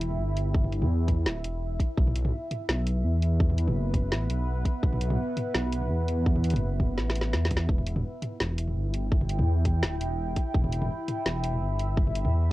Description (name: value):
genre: half-time drum and bass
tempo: 168 BPM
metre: 4/4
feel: half-time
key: E minor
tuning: A4 = 439 Hz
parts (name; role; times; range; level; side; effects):
- deep dark ambient pad; sustained chords; 0.0-12.5 s; B3 to B5; -34 LUFS; equal; chorus, built-in reverb, sidechain pumping, cassette tape
- dark detuned saw bass; bass; 0.0-12.5 s; D1 to E2; -27 LUFS; equal; none
- drum and bass drum kit; drums; 0.0-12.3 s; hi-hat, snare drum, toms; -32 LUFS; equal; none
- electronic kick drum; drums; 0.5-12.1 s; none; -25 LUFS; equal; none
room: little or no reverb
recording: home recording on cassette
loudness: -25 LUFS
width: side -17 dB against mid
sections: 0.0-12.5 A section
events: drum fill 7.0-7.7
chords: 0.0 Em; 2.0 Bsus4; 7.7 Em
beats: 0.19 | 0.55 0.90 1.26 1.62 | 1.97 2.33 2.69 3.04 | 3.40 3.76 4.12 4.47 | 4.83 5.19 5.54 5.90 | 6.26 6.62 6.97 7.33 | 7.69 8.04 8.40 8.76 | 9.12 9.47 9.83 10.19 | 10.54 10.90 11.26 11.62 | 11.97 12.33